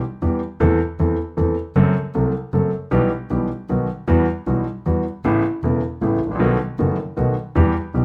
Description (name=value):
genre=tango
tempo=156 BPM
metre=3/4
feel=rubato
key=E minor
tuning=A4 = 440 Hz
part: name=warm concert grand piano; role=accompaniment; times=0.2-8.0 s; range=E1 to A4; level=-22 LUFS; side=equal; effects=none
part: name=dark double bass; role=bass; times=0.2-8.0 s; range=E1 to E2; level=-24 LUFS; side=equal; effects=none
room=moderate studio reverb, RT60 0.7 s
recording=band playing live in one room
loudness=-20 LUFS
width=mono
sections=0.0-8.0 A section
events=none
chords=0.0 Em; 0.6 Am/E; 1.8 F#dim; 2.9 Em/B; 3.7 B; 4.1 Emadd9; 5.2 Aadd9; 6.4 B7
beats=0.23 | 0.61 1.00 1.38 | 1.77 2.15 2.54 | 2.92 3.31 3.70 | 4.09 4.47 4.86 | 5.25 5.63 6.02 | 6.40 6.79 7.17 | 7.56 7.94